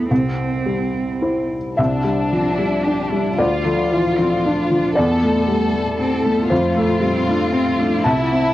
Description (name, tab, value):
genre	neoclassical piano and strings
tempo	114 BPM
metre	3/4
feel	rubato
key	C major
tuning	A4 = 440 Hz
part	rich cello	second line	0.0-8.5 s	A3 to G4	-24 LUFS	right 4 dB	none
part	felt-muted upright piano	accompaniment	0.0-8.5 s	C2 to A5	-18 LUFS	left 1 dB	none
part	rich chamber violin section	melody	1.8-8.5 s	D4 to A4	-21 LUFS	left 2 dB	cassette tape
part	warbly tape-like pad	sustained chords	3.0-8.5 s	G3 to D5	-33 LUFS	equal	none
room	light reverb, small room ambience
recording	home recording on cassette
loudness	-16 LUFS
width	side -14 dB against mid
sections	0.0-1.8 A section; 1.8-8.5 B section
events	none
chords	0.1 C; 1.8 Cadd9; 3.4 Dm; 5.0 Am/E; 6.5 F